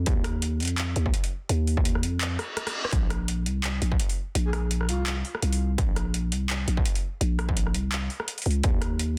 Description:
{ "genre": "half-time drum and bass", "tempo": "168 BPM", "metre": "4/4", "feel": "swing 55% on 16ths, half-time", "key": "unclear", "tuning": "A4 = 441 Hz", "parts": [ { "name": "growling 808-style bass", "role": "bass", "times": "0.0-9.2 s", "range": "Bb1 to F2", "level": "-28 LUFS", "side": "equal", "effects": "none" }, { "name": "drum and bass drum kit", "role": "drums", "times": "0.1-9.1 s", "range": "handclaps, hi-hat, rim click", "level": "-34 LUFS", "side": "equal", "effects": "none" }, { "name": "electronic kick drum", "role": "drums", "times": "0.1-8.7 s", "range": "none", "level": "-28 LUFS", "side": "equal", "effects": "distortion" }, { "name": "reverse cymbal", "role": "sound effects", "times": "2.4-2.9 s", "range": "none", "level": "-36 LUFS", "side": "equal", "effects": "none" }, { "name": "breathy flute-like synth lead", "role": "melody", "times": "4.5-5.2 s", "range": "F4 to Ab4", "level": "-39 LUFS", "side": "equal", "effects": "lush chorus, tape echo" } ], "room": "little or no reverb", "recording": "dense, heavily limited modern master", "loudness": "-27 LUFS", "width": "mono", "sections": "0.0-9.2 A section", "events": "reverse cymbal 2.4-2.9; drum fill 2.4-2.9", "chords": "0.0 Ebsus2; 2.9 N.C." }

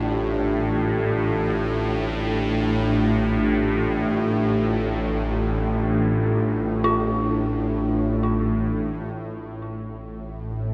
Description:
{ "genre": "dark ambient drone", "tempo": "free time", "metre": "none", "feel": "none", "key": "unclear", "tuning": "A4 = 440 Hz", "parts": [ { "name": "deep dark ambient pad", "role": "sustained chords", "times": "0.0-10.7 s", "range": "A3 to A4", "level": "-27 LUFS", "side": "equal", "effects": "chorus, built-in reverb" }, { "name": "dark detuned synth bell", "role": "arpeggios", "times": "0.0-9.2 s", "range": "F4", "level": "-31 LUFS", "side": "equal", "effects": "chorus, delay" }, { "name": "bowed-like drone", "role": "drone", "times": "0.0-10.7 s", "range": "A1 to A2", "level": "-26 LUFS", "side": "equal", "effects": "built-in reverb, phaser" }, { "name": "quartz singing bowl", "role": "texture", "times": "0.0-9.2 s", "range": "none", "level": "barely audible", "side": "none", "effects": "none" } ], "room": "wet cathedral reverb, RT60 6.2 s", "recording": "in a vast, echoing space", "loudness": "-23 LUFS", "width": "mono", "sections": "0.0-9.1 A section; 9.1-10.7 B section", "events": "filter sweep on synth drone 9.1-10.7", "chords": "0.0 Dm/A; 9.1 A5" }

